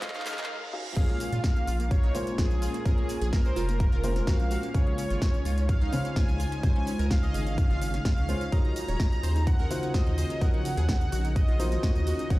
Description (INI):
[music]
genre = progressive house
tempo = 127 BPM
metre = 4/4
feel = straight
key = unclear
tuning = A4 = 442 Hz
[part]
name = soft supersaw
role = melody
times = 0.0-12.4 s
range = Ab4 to Bb5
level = -36 LUFS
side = right 1 dB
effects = cassette tape, sidechain pumping, tape echo
[part]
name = airy dreamy lead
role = second line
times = 0.0-12.4 s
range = Ab4 to Bb5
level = -45 LUFS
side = equal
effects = none
[part]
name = shimmering ambient pad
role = sustained chords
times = 0.2-12.4 s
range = Ab2 to Bb4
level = -38 LUFS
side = right 1 dB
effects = chorus, built-in reverb, sidechain pumping
[part]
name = wide unison pluck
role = arpeggios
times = 0.0-12.4 s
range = Ab3 to Eb5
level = -39 LUFS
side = right 1 dB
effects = phaser, sidechain pumping, tape echo
[part]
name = dark grand piano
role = stabs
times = 0.0-12.4 s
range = Ab2 to F5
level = -34 LUFS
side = left 2 dB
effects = sidechain pumping
[part]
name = big-room dance drum kit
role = drums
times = 0.0-12.4 s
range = crash cymbal, handclaps, hi-hat, ride cymbal, snare drum, tambourine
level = -38 LUFS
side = equal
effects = small room ambience
[part]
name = electronic kick drum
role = drums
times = 0.0-12.4 s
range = none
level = -25 LUFS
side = equal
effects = small room ambience
[part]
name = riser and reverse cymbal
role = sound effects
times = 0.0-1.0 s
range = none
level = -42 LUFS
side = right 2 dB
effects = none
[part]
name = round analog bass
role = bass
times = 1.0-12.4 s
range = Eb1 to Bb2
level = -29 LUFS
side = equal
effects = sidechain pumping
[sound]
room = light reverb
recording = played on a big sound system in a bare room, large studio reverb, high-pass filter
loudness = -24 LUFS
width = side -18 dB against mid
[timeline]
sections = 1.0-12.4 A section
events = drum fill 0.0-0.5; riser 0.0-0.5; reverse cymbal 0.0-1.0; break 0.5-1.0; drop 1.0-12.4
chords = 0.0 Ab7sus4; 1.0 Bbm7; 4.7 Dbmaj7; 8.5 Ebm9